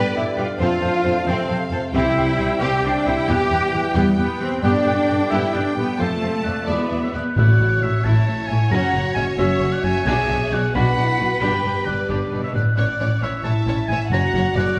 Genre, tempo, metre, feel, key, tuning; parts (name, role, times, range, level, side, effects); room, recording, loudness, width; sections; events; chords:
cinematic; 89 BPM (dotted quarters); 6/8; straight; A major from 7.4 s; A4 = 441 Hz
rich symphonic violin section; melody; 0.0-14.7 s; B4 to A5; -33 LUFS; equal
clear clarinet; second line; 0.0-7.2 s; G4 to C5; -35 LUFS; equal
clear oboe; second line; 0.0-14.8 s; B4 to B5; -28 LUFS; equal
warm symphonic violin section; second line; 0.0-14.8 s; G4 to G5; -33 LUFS; equal
rich studio viola section; accompaniment; 0.0-14.6 s; G#3 to G4; -32 LUFS; equal
clear trombone section; sustained chords; 0.0-7.1 s; B2 to A3; -33 LUFS; equal
mellow French horn section; sustained chords; 0.0-14.8 s; B3 to C5; -31 LUFS; equal
dark trumpet section; stabs; 0.0-7.3 s; G4 to B5; -30 LUFS; equal
rich symphonic cello section; bass; 0.0-14.8 s; F#2 to B4; -26 LUFS; equal
bright small flute group; second line; 0.1-7.2 s; E5 to A5; -35 LUFS; equal
dark symphonic double bass section; bass; 0.2-14.6 s; F#1 to G2; -26 LUFS; equal
timpani; percussion; 1.9-2.6, 7.4-8.0 s; A2 to C3; -24 LUFS; equal
wet recital hall reverb, RT60 1.5 s; heard from further back in the room; -20 LUFS; mono
0.0-7.4 A section; 7.4-14.8 B section
0.0 G; 0.6 F; 1.9 C; 3.3 Em; 4.6 G; 6.0 F; 6.7 E7; 7.4 A; 8.7 F#; 10.0 Bm; 11.4 G; 12.8 A; 14.1 F#